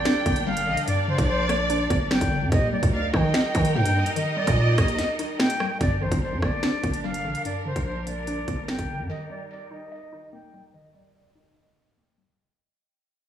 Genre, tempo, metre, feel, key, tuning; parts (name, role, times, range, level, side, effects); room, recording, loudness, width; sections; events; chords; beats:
hip hop, drill; 146 BPM; 4/4; half-time; G minor; A4 = 439 Hz
bright concert flute; melody; 0.0-12.4 s; C5 to G5; -29 LUFS; right 1 dB; low-pass filter, tape echo
warm studio violin section; second line; 0.0-5.4 s; D5 to G5; -31 LUFS; right 1 dB; tape echo
hollow square pluck; accompaniment; 0.0-12.4 s; G2 to Eb5; -30 LUFS; left 2 dB; chorus, low-pass filter
warm symphonic string section; sustained chords; 0.0-12.3 s; G3 to Bb4; -34 LUFS; right 1 dB; low-pass filter
growling 808-style bass; bass; 0.0-9.1 s; G1 to Eb3; -26 LUFS; right 1 dB
drill drum kit; drums; 0.1-8.9 s; finger snaps, hi-hat, kick drum, rim click, snare drum; -26 LUFS; right 1 dB; tape echo
small room ambience; echo-heavy mix, studio reverb; -21 LUFS; side -10 dB against mid
0.0-5.8 A section; 5.8-12.4 B section
break 5.0-5.8; fade-out 5.8-12.4; filter sweep 5.8-12.4
0.0 Gm; 2.5 Eb; 5.8 Gm; 9.1 Eb
0.05 0.47 | 0.88 1.29 1.70 2.11 | 2.52 2.93 3.34 3.75 | 4.16 4.58 4.99 5.40 | 5.81 6.22 6.63 7.04 | 7.45 7.86 8.27 8.68 | 9.10 9.51 9.92 10.33 | 10.74 11.15 11.56 11.97